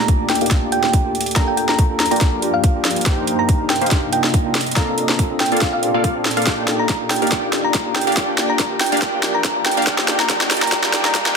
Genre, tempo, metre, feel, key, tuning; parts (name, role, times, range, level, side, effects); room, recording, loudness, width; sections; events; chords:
future bass; 141 BPM; 4/4; swing 54% on 16ths, half-time; A4 = 440 Hz
thumb-piano-like synth pluck; melody; 0.0-11.1 s; F5 to Bb5; -22 LUFS; equal; chorus, sidechain pumping, dub echo
tine electric piano; accompaniment; 0.0-11.4 s; Bb3 to A4; -25 LUFS; right 1 dB; medium stereo tremolo, sidechain pumping, dub echo
shimmering ambient pad; sustained chords; 0.0-11.4 s; G2 to Eb5; -29 LUFS; equal; chorus, built-in reverb, sidechain pumping
supersaw stab; riff; 0.0-11.4 s; Bb3 to G5; -22 LUFS; equal; sidechain pumping, low-pass filter, dub echo
electronic kick drum; drums; 0.1-11.2 s; -18 LUFS; equal; studio reverb
trap drum kit; drums; 0.1-11.3 s; hi-hat, snare drum; -20 LUFS; equal; high-pass filter on snare, studio reverb, high-pass filter on hats
riser; sound effects; 8.3-11.4 s; -31 LUFS; equal
moderate digital room reverb, RT60 1.1 s, digital ambience; dense, heavily limited modern master, high-pass filter; -15 LUFS; side -5 dB against mid
0.0-11.4 A section
build-up 0.0-11.4; drum fill 0.0-11.4; filter sweep on supersaw synth 0.0-11.4; filter sweep 0.0-11.4; riser 8.3-11.4
0.0 Ebmaj7; 1.1 Gm7; 3.1 Cm7; 4.8 Bbmaj7; 6.5 Ebmaj7; 8.0 Gm7; 9.9 Cm7